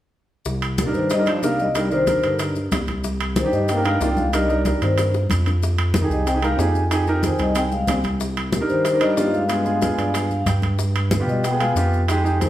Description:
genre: Afro-Cuban jazz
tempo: 186 BPM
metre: 4/4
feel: straight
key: C minor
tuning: A4 = 440 Hz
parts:
  - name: smooth synth bass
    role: bass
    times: 0.5-12.5 s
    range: C2 to B2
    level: -22 LUFS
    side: equal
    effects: none
  - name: bongos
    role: percussion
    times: 0.5-12.5 s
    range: none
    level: -32 LUFS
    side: left 5 dB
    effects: none
  - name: congas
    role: percussion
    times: 0.5-12.5 s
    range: none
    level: -27 LUFS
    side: left 1 dB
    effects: none
  - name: maracas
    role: percussion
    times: 0.5-12.5 s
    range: none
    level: -37 LUFS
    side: left 5 dB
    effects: none
  - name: timbales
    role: percussion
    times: 0.6-12.5 s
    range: none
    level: -30 LUFS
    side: right 4 dB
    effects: none
  - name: vibraphone with soft mallets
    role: melody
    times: 0.8-12.5 s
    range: G4 to Ab5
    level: -24 LUFS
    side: left 2 dB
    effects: none
  - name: mellow trombone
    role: second line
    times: 0.8-12.5 s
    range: Bb2 to C4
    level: -28 LUFS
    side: left 3 dB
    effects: none
  - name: clear grand piano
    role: accompaniment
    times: 0.9-12.5 s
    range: Ab3 to G5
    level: -24 LUFS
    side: right 2 dB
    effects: none
room: wet large studio reverb, RT60 1.1 s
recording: heard from further back in the room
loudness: -18 LUFS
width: side -13 dB against mid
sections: 0.5-12.5 A section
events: drum fill 4.8-5.6; grand piano fill 9.8-10.8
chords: 0.5 Cm9; 5.6 Fm9; 8.2 Cm9; 9.5 G7b9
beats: | 0.46 0.78 1.11 1.43 | 1.75 2.08 2.40 2.72 | 3.04 3.37 3.69 4.01 | 4.33 4.66 4.98 5.30 | 5.62 5.95 6.27 6.59 | 6.92 7.24 7.56 7.88 | 8.21 8.53 8.86 9.18 | 9.50 9.82 10.15 10.47 | 10.80 11.12 11.44 11.77 | 12.09 12.41

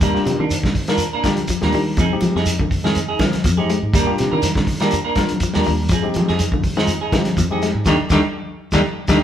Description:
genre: afrobeat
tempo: 122 BPM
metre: 4/4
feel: straight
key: unclear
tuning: A4 = 444 Hz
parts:
  - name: semi-hollow electric guitar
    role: arpeggios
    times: 0.0-9.2 s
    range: C3 to Ab3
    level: -24 LUFS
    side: left 4 dB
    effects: none
  - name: clean electric guitar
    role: stabs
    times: 0.0-9.2 s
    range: G3 to Bb4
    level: -23 LUFS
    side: right 3 dB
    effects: none
  - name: fingered electric bass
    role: bass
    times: 0.0-9.2 s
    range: Eb2 to F3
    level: -22 LUFS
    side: equal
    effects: none
  - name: vintage drum kit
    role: drums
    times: 0.0-9.2 s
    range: hi-hat, kick drum, snare drum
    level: -22 LUFS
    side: equal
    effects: none
  - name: congas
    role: percussion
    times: 0.0-9.2 s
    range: none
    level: -28 LUFS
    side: equal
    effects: none
  - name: shekere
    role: percussion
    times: 0.0-9.2 s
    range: none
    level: -27 LUFS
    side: right 1 dB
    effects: none
  - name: barky tine electric piano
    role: accompaniment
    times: 0.1-9.2 s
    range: Ab3 to Bb4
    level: -26 LUFS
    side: left 3 dB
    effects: overdrive
room: moderate large studio reverb, RT60 1.2 s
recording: band playing live in one room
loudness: -16 LUFS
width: side -10 dB against mid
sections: 0.0-9.2 A section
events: band accent 7.9-9.2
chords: 0.0 Ebmaj7; 2.0 Fm7; 3.9 Ebmaj7; 5.9 Fm7; 7.9 Ebmaj7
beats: | 0.01 0.50 0.99 1.49 | 1.98 2.47 2.96 3.45 | 3.94 4.43 4.92 5.41 | 5.90 6.39 6.88 7.37 | 7.87 8.36 8.84

